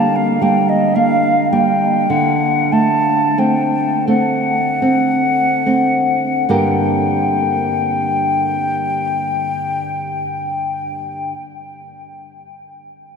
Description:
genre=romantic duo for flute and classical guitar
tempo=23-39 BPM (dotted quarters)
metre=12/8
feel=rubato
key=G minor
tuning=A4 = 441 Hz
part: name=concert flute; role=melody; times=0.0-11.3 s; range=Eb5 to A5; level=-18 LUFS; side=left 3 dB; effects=none
part: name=nylon-string guitar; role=accompaniment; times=0.0-11.3 s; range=G2 to Bb4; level=-17 LUFS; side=right 2 dB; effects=none
room=wet huge ambient reverb, RT60 7.8 s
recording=in a vast, echoing space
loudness=-14 LUFS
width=side -6 dB against mid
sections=0.0-6.5 A section; 6.5-13.2 B section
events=slowing down 0.0-6.5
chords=0.0 Gm/D; 2.1 D7; 6.5 Gm

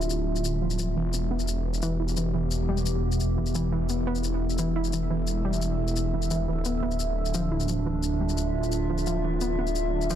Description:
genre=dark technical drum and bass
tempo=174 BPM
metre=4/4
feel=straight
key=E phrygian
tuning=A4 = 440 Hz
part: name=dark analog pad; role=sustained chords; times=0.0-10.2 s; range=D4 to E5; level=-35 LUFS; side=right 2 dB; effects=chorus, phaser
part: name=phased detuned saw bass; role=bass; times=0.0-10.2 s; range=D1 to E1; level=-27 LUFS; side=equal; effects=phaser, overdrive
part: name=shaker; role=drums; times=0.0-10.2 s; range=none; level=-36 LUFS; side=left 8 dB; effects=overdrive
part: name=warbly tape-like pad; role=texture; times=0.0-10.2 s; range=B3 to E5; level=-33 LUFS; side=equal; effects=chorus, built-in reverb
part: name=warbly dusty pluck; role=arpeggios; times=0.6-10.2 s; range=E3 to E4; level=-32 LUFS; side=right 1 dB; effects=chorus, dub echo
room=digital ambience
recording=dense, heavily limited modern master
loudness=-25 LUFS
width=side -10 dB against mid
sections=0.0-10.2 A section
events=filter sweep on synth arpeggio sound 0.0-10.2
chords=0.0 Dmadd9; 1.0 Em; 6.5 Dmadd9

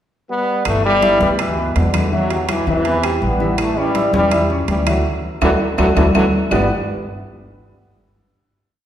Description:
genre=latin, salsa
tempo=164 BPM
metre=4/4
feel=straight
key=G major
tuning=A4 = 444 Hz
part: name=clear trombone section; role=melody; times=0.3-6.7 s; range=B2 to B3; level=-18 LUFS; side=equal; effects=none
part: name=upright bass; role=bass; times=0.7-6.7 s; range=G1 to E2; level=-21 LUFS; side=equal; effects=none
part: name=claves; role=percussion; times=0.7-6.6 s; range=none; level=-30 LUFS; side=left 4 dB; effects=none
part: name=congas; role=percussion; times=0.7-6.6 s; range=none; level=-23 LUFS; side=left 1 dB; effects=none
part: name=timbales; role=percussion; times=0.7-6.6 s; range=none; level=-25 LUFS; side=right 5 dB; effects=none
part: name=warm upright piano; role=accompaniment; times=0.8-6.7 s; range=E3 to E6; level=-22 LUFS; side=left 1 dB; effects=none
room=wet recital hall reverb, RT60 1.7 s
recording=recorded in a church or concert hall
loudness=-14 LUFS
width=side -10 dB against mid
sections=0.0-0.7 pickup bar; 0.7-6.5 verse; 6.5-8.0 final chord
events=band accent 5.0-6.5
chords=0.0 N.C.; 0.7 G6; 2.1 Emadd9; 3.6 A; 5.0 Dadd9; 6.5 G6

